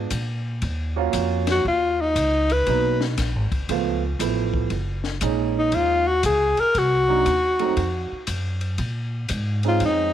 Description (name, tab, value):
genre	jazz, small-group swing and bop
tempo	118 BPM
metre	4/4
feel	swing 66% on 8ths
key	Bb minor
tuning	A4 = 440 Hz
part	clear alto saxophone	melody	0.0-10.1 s	D4 to Cb5	-20 LUFS	left 2 dB	none
part	warm concert grand piano	accompaniment	0.0-10.1 s	F3 to Gb4	-26 LUFS	right 12 dB	none
part	upright bass	bass	0.0-10.1 s	Gb1 to Bb2	-25 LUFS	equal	none
part	compact cocktail drum kit	drums	0.1-10.0 s	hi-hat, kick drum, ride cymbal, snare drum	-31 LUFS	left 3 dB	none
room	light reverb, small room ambience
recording	1960s-style stereo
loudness	-20 LUFS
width	side -10 dB against mid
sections	0.0-10.1 A section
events	none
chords	0.0 Bb7; 0.6 Ebm9; 2.7 Abm9; 3.7 Db7alt; 4.7 Gb69; 6.8 Cm7b5; 7.8 N.C.; 8.8 Bbm11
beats	0.11 | 0.62 1.13 1.64 2.15 | 2.67 3.18 3.69 4.20 | 4.71 5.22 5.73 6.24 | 6.75 7.26 7.77 8.28 | 8.79 9.31 9.82